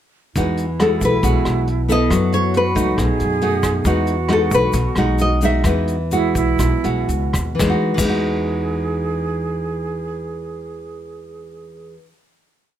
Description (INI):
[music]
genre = bossa nova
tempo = 116-137 BPM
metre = 4/4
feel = straight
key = E major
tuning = A4 = 440 Hz
[part]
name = breathy mellow silver concert flute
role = second line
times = 0.3-12.0 s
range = E4 to G#4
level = -25 LUFS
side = right 6 dB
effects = none
[part]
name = nylon-string guitar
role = accompaniment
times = 0.4-12.1 s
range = B2 to A4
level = -20 LUFS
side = left 1 dB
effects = none
[part]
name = upright bass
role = bass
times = 0.4-12.0 s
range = B1 to F#2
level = -22 LUFS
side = equal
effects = none
[part]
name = vintage brush drum kit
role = drums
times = 0.4-8.1 s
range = crash cymbal, hi-hat, kick drum, rim click, snare drum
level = -26 LUFS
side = equal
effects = none
[part]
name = egg shaker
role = percussion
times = 0.4-8.1 s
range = none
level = -33 LUFS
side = left 11 dB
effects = none
[part]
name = nylon-string guitar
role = melody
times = 0.8-7.1 s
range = A4 to E5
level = -20 LUFS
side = left 2 dB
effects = none
[sound]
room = light reverb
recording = none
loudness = -16 LUFS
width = side -10 dB against mid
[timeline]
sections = 0.4-7.6 A section; 7.6-11.7 final chord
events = slowing down 3.9-7.6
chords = 0.4 Emaj9; 2.1 F#m7; 3.0 B7; 3.9 Emaj9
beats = | 0.36 0.80 1.23 1.67 | 2.11 2.55 2.98 3.42 | 3.86 4.30 4.75 5.19 | 5.65 6.12 6.60 7.09 | 7.60 8.11 8.63 9.15 | 9.66 10.18 10.70 11.21